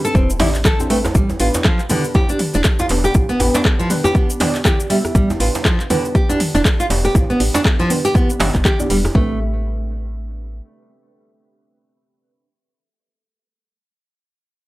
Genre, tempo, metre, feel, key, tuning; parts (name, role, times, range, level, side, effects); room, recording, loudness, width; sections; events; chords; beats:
afro house; 120 BPM; 4/4; swing 59% on 16ths; A minor; A4 = 440 Hz
nylon-string guitar; arpeggios; 0.0-9.4 s; D3 to A4; -20 LUFS; equal; sidechain pumping, analog delay
deep mellow chord stab; stabs; 0.0-12.5 s; B3 to E5; -24 LUFS; right 1 dB; chorus, phaser, cassette tape, sidechain pumping, analog delay
deep house drum kit; drums; 0.0-9.1 s; handclaps, hi-hat, rim click, shaker, toms; -22 LUFS; left 1 dB; overdrive
woody FM bass; bass; 0.1-10.6 s; E1 to A1; -22 LUFS; equal; tube saturation, sidechain pumping
electronic kick drum; drums; 0.1-9.3 s; -16 LUFS; equal; overdrive
djembe; percussion; 0.2-9.1 s; -25 LUFS; right 1 dB
digital ambience; dry, gritty hardware recording; -14 LUFS; side -18 dB against mid
0.0-9.2 A section; 9.2-13.2 B section
drop 0.0-9.2
0.0 Am11; 1.2 G; 9.2 Am11
0.15 0.65 | 1.15 1.65 2.15 2.65 | 3.15 3.65 4.15 4.65 | 5.15 5.65 6.15 6.65 | 7.15 7.65 8.15 8.65 | 9.15 9.65 10.15 10.65 | 11.15 11.65 12.15